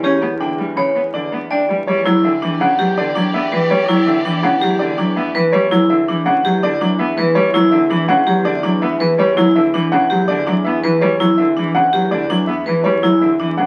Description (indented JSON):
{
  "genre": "classical, minimalist pattern music",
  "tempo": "164 BPM",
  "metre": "5/4",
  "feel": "straight",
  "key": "E dorian",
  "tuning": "A4 = 441 Hz",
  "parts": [
    { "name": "warm grand piano", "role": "melody", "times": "0.0-13.7 s", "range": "C#5 to B5", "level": "-22 LUFS", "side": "equal", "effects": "none" },
    { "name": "rich cello", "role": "accompaniment", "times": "0.0-13.7 s", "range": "C#3 to D4", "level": "-21 LUFS", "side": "equal", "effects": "none" },
    { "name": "vibraphone with hard mallets", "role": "arpeggios", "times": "0.0-13.6 s", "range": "D4 to D5", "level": "-20 LUFS", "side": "equal", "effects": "none" },
    { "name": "rich symphonic double bass section", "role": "bass", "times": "0.0-13.7 s", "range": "E2", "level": "-27 LUFS", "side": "equal", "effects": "none" },
    { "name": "clear chamber violin section", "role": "sustained chords", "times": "1.9-5.3 s", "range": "G4 to D5", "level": "-29 LUFS", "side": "equal", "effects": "none" }
  ],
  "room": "wet large studio reverb, RT60 0.9 s",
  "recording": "very old 78 rpm record, vinyl crackle",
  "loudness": "-16 LUFS",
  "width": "mono",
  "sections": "0.0-1.9 A section; 1.9-13.7 B section",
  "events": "none",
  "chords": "0.0 G/E; 1.9 Em9"
}